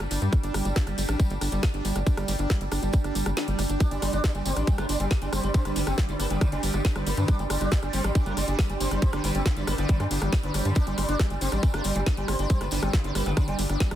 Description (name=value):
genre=psychedelic trance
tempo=138 BPM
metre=4/4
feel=straight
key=unclear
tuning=A4 = 440 Hz
part: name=bubbling stepped-filter texture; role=sustained chords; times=0.0-14.0 s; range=G3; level=-37 LUFS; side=right 2 dB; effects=chorus, built-in reverb, sidechain pumping
part: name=screaming distorted acid line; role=riff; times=0.0-14.0 s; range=G3 to D4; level=-33 LUFS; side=right 1 dB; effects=distortion, chorus, auto-pan, sidechain pumping, tape echo
part: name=tight sequencer bass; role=bass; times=0.0-14.0 s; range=G1 to G2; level=-28 LUFS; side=equal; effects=none
part: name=garage drum kit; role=drums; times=0.0-14.0 s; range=hi-hat, rim click, snare drum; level=-33 LUFS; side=left 1 dB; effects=none
part: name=tambourine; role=percussion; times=0.0-14.0 s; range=none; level=-40 LUFS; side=right 3 dB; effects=none
part: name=granular cloud pad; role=texture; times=0.0-14.0 s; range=D4 to D6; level=-36 LUFS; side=right 3 dB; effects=built-in reverb, sidechain pumping
part: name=electronic kick drum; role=drums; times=0.3-13.9 s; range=none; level=-22 LUFS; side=equal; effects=none
part: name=sitar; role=melody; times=3.8-14.0 s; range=D3 to D4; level=-32 LUFS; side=right 1 dB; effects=phaser, sidechain pumping, ping-pong delay
room=digital ambience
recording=dense, heavily limited modern master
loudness=-23 LUFS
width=side -12 dB against mid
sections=0.0-14.0 A section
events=kick drops out 3.4-3.8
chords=0.0 G5